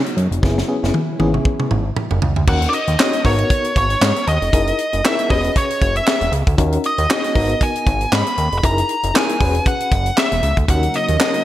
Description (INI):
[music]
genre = early-eighties boogie funk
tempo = 117 BPM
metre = 4/4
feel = swing 56% on 16ths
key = G# minor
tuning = A4 = 440 Hz
[part]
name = brassy analog pad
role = sustained chords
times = 0.0-2.5, 10.7-11.4 s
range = B2 to E4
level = -29 LUFS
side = right 1 dB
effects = chorus
[part]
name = fat analog bass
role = bass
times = 0.0-11.2 s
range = E1 to G#2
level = -19 LUFS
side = equal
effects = none
[part]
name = tight funk drum kit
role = drums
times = 0.1-11.4 s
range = crash cymbal, handclaps, hi-hat, kick drum, snare drum, toms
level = -19 LUFS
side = equal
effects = gated reverb
[part]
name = FM electric piano with tremolo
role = accompaniment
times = 0.4-11.4 s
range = B3 to C#5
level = -24 LUFS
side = left 2 dB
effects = none
[part]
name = nasal lead guitar with a parked wah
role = melody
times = 2.5-11.4 s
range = C#5 to B5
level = -20 LUFS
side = equal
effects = overdrive
[sound]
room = light reverb, studio reverb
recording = bright 1980s-style digital production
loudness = -15 LUFS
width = side -13 dB against mid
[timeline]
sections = 0.0-2.5 A section; 2.5-11.4 B section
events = drum fill 0.4-2.5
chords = 0.4 F#7sus4; 2.5 D#m7; 3.2 G#m7; 4.5 F#13; 5.3 E6; 6.6 D#m7; 7.4 G#m7; 8.6 F#13; 9.4 E6; 10.7 D#m7